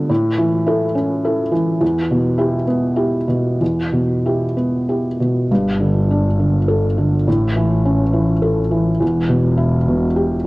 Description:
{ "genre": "neoclassical piano and strings", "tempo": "92-106 BPM", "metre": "3/4", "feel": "rubato", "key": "E minor", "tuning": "A4 = 442 Hz", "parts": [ { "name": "felt-muted upright piano", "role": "accompaniment", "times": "0.0-10.5 s", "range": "E2 to A4", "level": "-16 LUFS", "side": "equal", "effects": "cassette tape" }, { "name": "clear double bass", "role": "bass", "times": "5.5-10.5 s", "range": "E1 to A1", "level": "-19 LUFS", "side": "equal", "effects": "none" } ], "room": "small room reverb", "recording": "home recording on cassette", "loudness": "-15 LUFS", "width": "side -21 dB against mid", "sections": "0.0-5.5 A section; 5.5-10.5 B section", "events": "none", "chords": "0.1 A; 1.8 Em; 5.5 Gsus2; 7.3 A; 9.0 Em" }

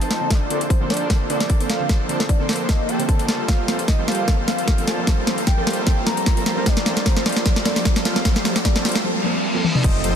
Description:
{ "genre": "future bass", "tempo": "151 BPM", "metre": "4/4", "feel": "swing 54% on 16ths, half-time", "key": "G minor", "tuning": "A4 = 440 Hz", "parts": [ { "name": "soft octave-layered synth lead", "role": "melody", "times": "0.0-10.1 s", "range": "C5 to Bb5", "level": "-28 LUFS", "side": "equal", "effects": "chorus, phaser, sidechain pumping, dub echo" }, { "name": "soft round pluck", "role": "accompaniment", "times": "0.0-10.0 s", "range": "D3 to D5", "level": "-28 LUFS", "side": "right 2 dB", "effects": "ensemble chorus, sidechain pumping, dub echo" }, { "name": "ethereal airy pad", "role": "sustained chords", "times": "0.0-9.0 s", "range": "F3 to D5", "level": "-33 LUFS", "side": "right 2 dB", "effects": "none" }, { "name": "supersaw chords", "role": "riff", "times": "0.0-10.2 s", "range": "F3 to C5", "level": "-26 LUFS", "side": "right 1 dB", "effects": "sidechain pumping, low-pass filter" }, { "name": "wide detuned saw bass", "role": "bass", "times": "0.0-10.2 s", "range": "F1 to F2", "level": "-33 LUFS", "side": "equal", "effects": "none" }, { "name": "trap drum kit", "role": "drums", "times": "0.0-10.1 s", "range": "crash cymbal, hi-hat, snare drum, toms", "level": "-22 LUFS", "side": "left 1 dB", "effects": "overdrive" }, { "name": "riser, reverse cymbal and impact", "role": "sound effects", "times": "1.1-10.2 s", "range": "none", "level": "-31 LUFS", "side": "equal", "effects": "none" }, { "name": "electronic kick drum", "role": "drums", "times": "0.3-9.9 s", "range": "none", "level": "-19 LUFS", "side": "equal", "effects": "overdrive" } ], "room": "light reverb", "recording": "dense, heavily limited modern master", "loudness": "-17 LUFS", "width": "side -8 dB against mid", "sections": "0.0-9.8 A section", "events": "build-up 0.0-9.8; drum fill 0.0-9.0, 9.6; reverse cymbal 9.0-9.8; impact 9.8-10.2", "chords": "0.3 Bbmaj9; 3.3 Gm11" }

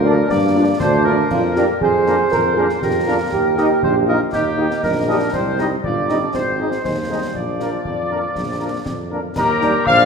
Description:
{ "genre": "military-style march for wind band", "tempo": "119 BPM", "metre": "2/4", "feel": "straight", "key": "Eb major", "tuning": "A4 = 440 Hz", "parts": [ { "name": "dark trumpet section", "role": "melody", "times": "0.0-10.1 s", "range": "Bb4 to F5", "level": "-22 LUFS", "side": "left 2 dB", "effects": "none" }, { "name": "warm euphonium", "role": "second line", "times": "0.0-8.8 s", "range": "F3 to Bb4", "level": "-20 LUFS", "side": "right 3 dB", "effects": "none" }, { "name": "warm woodwind section", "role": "second line", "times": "0.0-10.1 s", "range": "G4 to Eb5", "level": "-22 LUFS", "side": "left 1 dB", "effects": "none" }, { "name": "dark French horn section", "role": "accompaniment", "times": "0.0-9.7 s", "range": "G3 to Ab4", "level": "-27 LUFS", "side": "left 6 dB", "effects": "none" }, { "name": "mellow tuba", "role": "bass", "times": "0.0-10.1 s", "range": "G1 to G2", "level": "-21 LUFS", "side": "right 1 dB", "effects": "none" }, { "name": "clear trombone section", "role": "sustained chords", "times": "0.1-10.1 s", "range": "F3 to Eb4", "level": "-27 LUFS", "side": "right 2 dB", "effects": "none" }, { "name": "concert snare drum, concert bass drum and clash cymbals", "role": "drums", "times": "0.3-10.1 s", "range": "none", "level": "-29 LUFS", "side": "left 2 dB", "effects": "none" }, { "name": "wooden piccolo", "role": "second line", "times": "9.4-10.1 s", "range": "Bb5 to F6", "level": "-20 LUFS", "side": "left 7 dB", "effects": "none" } ], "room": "moderate concert hall reverb, RT60 2.1 s", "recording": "minimal, uncompressed stereo recording", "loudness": "-16 LUFS", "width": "side -5 dB against mid", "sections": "0.0-9.4 A section", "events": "none", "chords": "0.0 Gm7; 1.3 Bb7/F; 3.3 Eb; 5.3 Cm; 6.3 Ab; 7.4 Bb; 9.4 Eb" }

